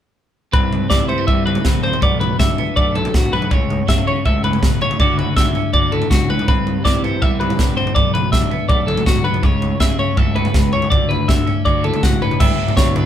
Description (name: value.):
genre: math rock and midwest emo.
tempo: 162 BPM.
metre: 4/4.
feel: straight.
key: unclear.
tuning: A4 = 440 Hz.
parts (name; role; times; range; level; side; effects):
twelve-string electric guitar; accompaniment; 0.5-13.1 s; D2 to F#4; -24 LUFS; right 3 dB; none.
twelve-string electric guitar; arpeggios; 0.5-13.1 s; F#4 to E5; -20 LUFS; left 2 dB; none.
fuzz picked electric bass; bass; 0.5-13.1 s; G1 to C#3; -23 LUFS; equal; overdrive.
crisp fusion drum kit; drums; 0.5-13.0 s; crash cymbal, kick drum, snare drum, toms; -16 LUFS; equal; none.
room: moderate studio reverb, RT60 0.8 s.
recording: band playing live in one room.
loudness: -14 LUFS.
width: side -10 dB against mid.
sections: 0.5-12.4 A section.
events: none.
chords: 0.5 Cmaj7; 2.0 Bm7; 3.5 F#m7/C#; 5.0 Dmaj7; 6.5 Cmaj7; 8.0 Bm7; 9.4 F#m7/C#; 10.9 Dmaj7; 12.4 G6.